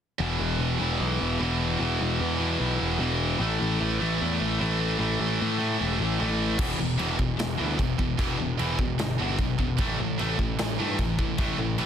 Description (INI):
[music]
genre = heavy metal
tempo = 150 BPM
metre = 4/4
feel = straight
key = unclear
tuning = A4 = 441 Hz
[part]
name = heavy high-gain guitar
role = riff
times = 0.2-11.9 s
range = E2 to A3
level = -29 LUFS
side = right 11 dB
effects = distortion
[part]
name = high-gain distorted guitar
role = riff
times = 0.2-11.9 s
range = E2 to A3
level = -29 LUFS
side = left 8 dB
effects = distortion
[part]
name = fuzz picked electric bass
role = bass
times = 0.2-11.9 s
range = E1 to A2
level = -29 LUFS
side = equal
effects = overdrive
[part]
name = big rock drum kit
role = drums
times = 6.6-11.9 s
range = china cymbal, crash cymbal, kick drum, snare drum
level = -28 LUFS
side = equal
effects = none
[sound]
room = small room ambience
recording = dense, heavily limited modern master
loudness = -24 LUFS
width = side -8 dB against mid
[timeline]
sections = 0.2-6.6 A section; 6.6-11.9 B section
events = none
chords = 0.2 E5; 3.4 A5; 6.6 E5; 9.8 A5